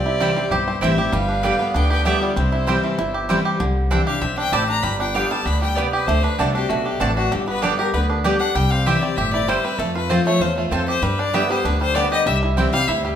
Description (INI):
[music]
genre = bluegrass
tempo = 194 BPM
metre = 4/4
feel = straight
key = C major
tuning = A4 = 440 Hz
[part]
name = dark fiddle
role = melody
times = 0.0-3.3 s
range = C5 to G5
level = -26 LUFS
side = right 2 dB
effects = none
[part]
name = clear fiddle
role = second line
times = 0.0-13.2 s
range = E4 to B5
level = -24 LUFS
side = left 4 dB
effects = none
[part]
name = picked steel-string acoustic guitar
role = accompaniment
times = 0.0-13.2 s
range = E2 to G4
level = -24 LUFS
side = left 2 dB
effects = none
[part]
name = bluegrass banjo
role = arpeggios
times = 0.0-13.2 s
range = D3 to G4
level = -23 LUFS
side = right 3 dB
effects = none
[part]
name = upright bass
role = bass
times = 0.0-13.1 s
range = G1 to G2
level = -23 LUFS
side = equal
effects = none
[part]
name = mandolin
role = stabs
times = 0.2-12.7 s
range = B3 to A5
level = -26 LUFS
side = right 4 dB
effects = none
[sound]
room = wet large studio reverb, RT60 1.4 s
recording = minimal, uncompressed stereo recording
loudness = -17 LUFS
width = side -9 dB against mid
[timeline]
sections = 0.0-3.6 A section; 3.6-13.2 B section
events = fiddle solo 3.6-13.2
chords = 0.0 C; 1.1 G; 2.4 C; 3.6 Cadd9; 4.8 G; 6.1 D7; 7.3 G; 8.6 C; 9.8 F; 11.0 G; 12.3 C